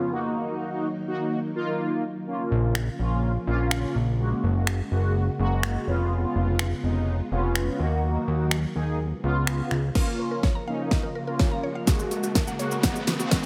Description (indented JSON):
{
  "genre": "dance-pop",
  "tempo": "125 BPM",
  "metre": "4/4",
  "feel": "straight",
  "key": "unclear",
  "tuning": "A4 = 440 Hz",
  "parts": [
    { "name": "mellow synth brass", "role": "accompaniment", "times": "0.0-13.5 s", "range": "F3 to Ab4", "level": "-32 LUFS", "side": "equal", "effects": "chorus, phaser, sidechain pumping" },
    { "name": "soft string machine", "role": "sustained chords", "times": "0.0-13.5 s", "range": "Db3 to Gb4", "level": "-35 LUFS", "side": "equal", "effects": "ensemble chorus, sidechain pumping" },
    { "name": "fat analog bass", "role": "bass", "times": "2.5-9.9 s", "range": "F1 to Eb2", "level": "-27 LUFS", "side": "equal", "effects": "sidechain pumping" },
    { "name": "pop drum kit", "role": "drums", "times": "2.8-13.5 s", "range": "crash cymbal, finger snaps, hi-hat, kick drum, shaker, snare drum", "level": "-28 LUFS", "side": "equal", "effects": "none" },
    { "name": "mallet-like synth pluck", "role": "arpeggios", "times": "10.0-13.5 s", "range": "Gb4 to Bb5", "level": "-37 LUFS", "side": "equal", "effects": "chorus, sidechain pumping, tape echo" },
    { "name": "riser", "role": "sound effects", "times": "11.2-13.5 s", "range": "none", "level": "-37 LUFS", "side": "equal", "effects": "none" }
  ],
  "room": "light reverb",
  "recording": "high-pass filter",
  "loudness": "-26 LUFS",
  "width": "mono",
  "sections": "0.0-10.0 A section; 10.0-13.5 B section",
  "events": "build-up 10.0-13.5; drum fill 10.0-13.5; filter sweep 10.0-13.5; riser 11.2-13.5",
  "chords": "0.1 Ebm; 2.3 Bbm; 4.2 Gbadd9; 5.9 Db7/F; 7.8 Ebm; 9.0 Db7; 10.0 Bbm; 11.9 Gbadd9"
}